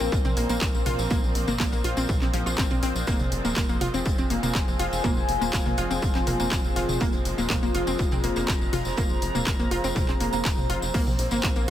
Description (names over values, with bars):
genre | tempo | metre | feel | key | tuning
melodic techno | 122 BPM | 4/4 | straight | unclear | A4 = 443 Hz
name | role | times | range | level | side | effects
bright symphonic string section | sustained chords | 0.0-11.7 s | F3 to C4 | -34 LUFS | equal | sidechain pumping
analog pluck | arpeggios | 0.0-11.6 s | F3 to F4 | -30 LUFS | equal | chorus, sidechain pumping, tape echo
tight sequencer bass | bass | 0.0-11.7 s | Eb1 to Bb1 | -32 LUFS | equal | sidechain pumping
overtone-sweeping drone | drone | 0.0-11.7 s | Bb2 to F3 | -37 LUFS | equal | chorus, built-in reverb, phaser, sidechain pumping
tambourine | percussion | 0.0-11.7 s | none | -37 LUFS | left 3 dB | none
warbly tape-like pad | texture | 0.0-11.7 s | F4 to Bb5 | -32 LUFS | left 2 dB | chorus, built-in reverb, phaser, sidechain pumping
electronic kick drum | drums | 0.1-11.5 s | none | -26 LUFS | equal | overdrive
loose indie drum kit | drums | 0.1-11.6 s | hi-hat, snare drum | -43 LUFS | right 3 dB | none
techno drum kit | drums | 0.2-11.5 s | crash cymbal, handclaps, hi-hat, toms | -31 LUFS | right 1 dB | overdrive, sidechain pumping on cymbals, sidechain pumping on toms, sidechain pumping on hats
room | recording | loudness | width
studio ambience | none | -22 LUFS | side -11 dB against mid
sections
0.0-11.7 A section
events
none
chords
0.0 Bbsus2; 3.1 Fm; 10.9 Bbsus2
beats
0.12 0.61 | 1.11 1.60 2.09 2.58 | 3.07 3.56 4.06 4.55 | 5.04 5.53 6.02 6.52 | 7.01 7.50 7.99 8.48 | 8.97 9.47 9.96 10.45 | 10.94 11.43